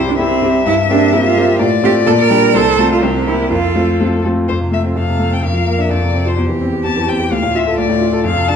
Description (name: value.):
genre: quick classical-period movement for piano trio.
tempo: 128 BPM.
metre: 2/4.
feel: straight.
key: F major.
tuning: A4 = 440 Hz.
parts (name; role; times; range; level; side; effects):
rich violin; melody; 0.0-8.6 s; G4 to A5; -19 LUFS; left 7 dB; none.
bright concert grand piano; accompaniment; 0.0-8.6 s; C2 to A4; -14 LUFS; left 1 dB; none.
clear cello; second line; 0.1-8.6 s; C4 to Bb4; -18 LUFS; right 8 dB; none.
room: wet recital hall reverb, RT60 1.5 s.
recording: dark, warm production.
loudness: -12 LUFS.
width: side -7 dB against mid.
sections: 0.0-4.5 A section; 4.5-8.6 B section.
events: none.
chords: 0.0 C; 0.7 C7/G; 1.6 F/A; 2.1 Gm/Bb; 2.5 F/C; 3.0 C7; 3.5 F; 5.4 Bb/F; 5.9 F; 6.4 C/E; 7.3 Dm.